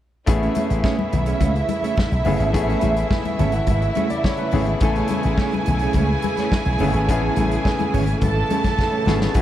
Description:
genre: disco.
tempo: 106 BPM.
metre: 4/4.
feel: straight.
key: A major.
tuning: A4 = 440 Hz.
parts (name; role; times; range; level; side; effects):
dark studio violin section; second line; 0.3-9.4 s; E4 to A5; -25 LUFS; right 4 dB; none.
clean electric guitar; accompaniment; 0.3-9.4 s; A3 to C#5; -26 LUFS; right 8 dB; none.
clear baby grand piano; accompaniment; 0.3-9.4 s; A3 to A5; -26 LUFS; left 7 dB; none.
clear studio string section; sustained chords; 0.3-9.4 s; C#3 to F#4; -29 LUFS; equal; none.
slap bass with an envelope filter; bass; 0.3-9.4 s; F#1 to C#2; -21 LUFS; equal; tube saturation.
vintage drum kit; drums; 0.3-9.4 s; hi-hat, kick drum, snare drum; -24 LUFS; equal; none.
congas; percussion; 0.3-9.4 s; none; -28 LUFS; left 6 dB; none.
room: little or no reverb.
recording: faint mains hum.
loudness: -18 LUFS.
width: side -12 dB against mid.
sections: 0.3-9.4 A section.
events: grand piano fill 3.1-4.8; drum fill 8.8-9.4.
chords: 0.3 Amaj7.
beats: | 0.27 0.84 1.41 1.98 | 2.54 3.11 3.68 4.24 | 4.81 5.38 5.95 6.51 | 7.08 7.65 8.22 8.78 | 9.35.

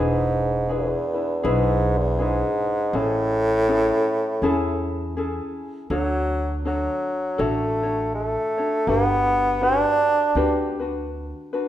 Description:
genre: Hawaiian.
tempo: 81 BPM.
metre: 4/4.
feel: swing 60% on 8ths.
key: A major, D major from 5.9 s.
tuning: A4 = 441 Hz.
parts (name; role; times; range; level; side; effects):
warm bassoon; melody; 0.0-10.8 s; E2 to D4; -22 LUFS; right 1 dB; none.
ukulele; accompaniment; 0.0-11.7 s; C#4 to C#5; -26 LUFS; left 2 dB; none.
upright bass; bass; 0.0-11.3 s; E1 to E2; -27 LUFS; right 1 dB; none.
room: moderate recital hall reverb, RT60 1.6 s.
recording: minimal, uncompressed stereo recording.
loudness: -20 LUFS.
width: side -12 dB against mid.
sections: 0.0-5.9 A section; 5.9-11.7 B section.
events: none.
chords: 0.0 E7; 2.9 Amaj7; 5.9 Dmaj7; 8.9 Gmaj7.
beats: 0.71 1.45 2.19 | 2.94 3.68 4.42 5.16 | 5.90 6.65 7.39 8.13 | 8.87 9.61 10.35 11.09.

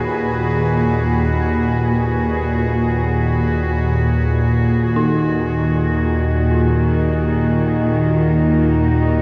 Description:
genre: dark ambient drone.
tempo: free time.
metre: none.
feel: none.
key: Eb minor.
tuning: A4 = 441 Hz.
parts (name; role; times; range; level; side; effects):
warm chamber cello section; sustained chords; 0.0-9.2 s; Eb2 to B4; -22 LUFS; equal; none.
dark detuned synth bell; arpeggios; 0.0-9.2 s; Eb4 to G#4; -32 LUFS; equal; none.
organ-like drone; drone; 0.0-9.2 s; Eb2 to Bb2; -19 LUFS; equal; ensemble chorus, built-in reverb.
bronze singing bowl; texture; 0.0-5.0 s; none; barely audible; none; none.
room: wet cathedral reverb, RT60 6.1 s.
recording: dark, warm production.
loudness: -17 LUFS.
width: mono.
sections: 0.0-5.0 A section; 5.0-9.2 B section.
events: none.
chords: 0.0 Eadd9/Eb; 5.0 Ebmadd11.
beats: free time.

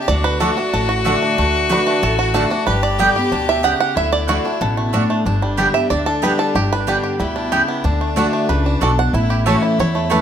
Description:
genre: bluegrass.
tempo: 186 BPM.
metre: 4/4.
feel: straight.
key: D major.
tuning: A4 = 440 Hz.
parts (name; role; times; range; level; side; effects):
bluegrass banjo; melody; 0.0-10.2 s; G3 to F#5; -20 LUFS; right 4 dB; tape echo.
clear fiddle; second line; 0.0-10.2 s; D4 to G4; -23 LUFS; left 3 dB; none.
picked steel-string acoustic guitar; accompaniment; 0.0-10.2 s; E2 to G4; -21 LUFS; left 1 dB; none.
upright bass; bass; 0.1-10.2 s; G1 to E2; -21 LUFS; equal; none.
mandolin; stabs; 0.4-10.2 s; A3 to A5; -19 LUFS; right 4 dB; none.
room: moderate studio reverb, RT60 0.6 s.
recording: none.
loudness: -15 LUFS.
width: side -8 dB against mid.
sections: 0.0-5.3 A section; 5.3-10.2 A section.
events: five-string banjo solo 0.0-10.2.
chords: 0.1 D; 2.7 G; 4.0 D; 5.3 G; 7.8 D; 9.1 A.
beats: | 0.09 0.41 0.73 1.06 | 1.38 1.70 2.03 2.35 | 2.67 3.00 3.32 3.64 | 3.96 4.29 4.61 4.93 | 5.26 5.58 5.91 6.23 | 6.55 6.88 7.20 7.52 | 7.85 8.17 8.49 8.82 | 9.14 9.46 9.79 10.11.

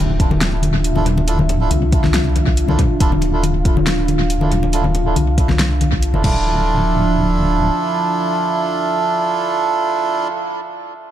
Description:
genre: deep dubstep.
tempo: 139 BPM.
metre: 4/4.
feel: half-time.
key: D minor.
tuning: A4 = 441 Hz.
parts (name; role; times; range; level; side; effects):
dark analog pad; sustained chords; 0.0-10.3 s; F3 to F5; -23 LUFS; right 2 dB; chorus.
deep soft wobble bass; bass; 0.0-7.7 s; D1 to C2; -18 LUFS; equal; chorus.
impact; sound effects; 0.0-1.3 s; none; -29 LUFS; equal; none.
wind-like tuned noise texture; texture; 0.0-6.5 s; F3 to F4; -30 LUFS; left 3 dB; none.
deep house drum kit; drums; 0.2-6.3 s; crash cymbal, hi-hat, snare drum; -24 LUFS; left 1 dB; studio reverb, tape echo.
electronic kick drum; drums; 0.2-6.3 s; none; -16 LUFS; equal; studio reverb.
congas; percussion; 0.3-6.3 s; none; -21 LUFS; left 3 dB; tape echo.
melodica; stabs; 1.0-10.3 s; D4 to A4; -20 LUFS; right 3 dB; low-pass filter, tape echo.
room: light reverb, digital ambience.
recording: echo-heavy mix.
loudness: -14 LUFS.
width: side -11 dB against mid.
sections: 0.0-6.5 A section; 6.5-9.9 B section.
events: impact 0.0-1.3; filter sweep on wobble bass 0.0-6.5.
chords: 0.0 Dmadd9.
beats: 0.41 0.84 | 1.28 1.71 2.14 2.57 | 3.00 3.44 3.87 4.30 | 4.73 5.16 5.59 6.03 | 6.46 6.89 7.32 7.75 | 8.18 8.61 9.05 9.48.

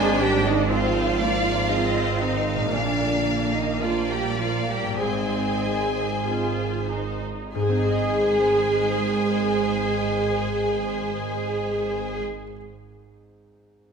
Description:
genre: cinematic, emotional film score for orchestra.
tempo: 46-62 BPM.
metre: 4/4.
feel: rubato.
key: Ab lydian.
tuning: A4 = 436 Hz.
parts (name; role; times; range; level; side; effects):
rich symphonic violin section; melody; 0.0-12.2 s; C5 to F5; -32 LUFS; left 5 dB; none.
large flute ensemble; second line; 0.0-12.2 s; D5 to Ab5; -34 LUFS; left 3 dB; none.
rich symphonic violin section; second line; 0.0-12.2 s; D5 to Ab5; -32 LUFS; left 1 dB; none.
clear grand piano; accompaniment; 0.0-13.9 s; Ab1 to Eb5; -31 LUFS; right 1 dB; none.
rich symphonic viola section; accompaniment; 0.0-12.2 s; Ab3 to Ab4; -28 LUFS; right 2 dB; none.
mellow French horn section; sustained chords; 0.0-12.2 s; D3 to Ab3; -31 LUFS; left 1 dB; none.
concert harp; arpeggios; 0.0-12.6 s; Ab2 to Eb5; -34 LUFS; left 6 dB; none.
rich symphonic cello section; bass; 0.0-12.2 s; D4 to Ab4; -28 LUFS; right 2 dB; none.
rich symphonic double bass section; bass; 0.0-12.2 s; Ab1 to Bb1; -30 LUFS; right 6 dB; none.
room: wet concert hall reverb, RT60 2.0 s.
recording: minimal, uncompressed stereo recording.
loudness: -21 LUFS.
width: side -6 dB against mid.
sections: 0.0-7.5 A section; 7.5-12.6 B section.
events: slowing down 0.0-7.5.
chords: 0.0 Ab; 2.7 Bb; 5.0 Ab.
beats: 0.70 1.69 | 2.73 3.82 5.01 6.26 | 7.55 8.81 10.06 11.32.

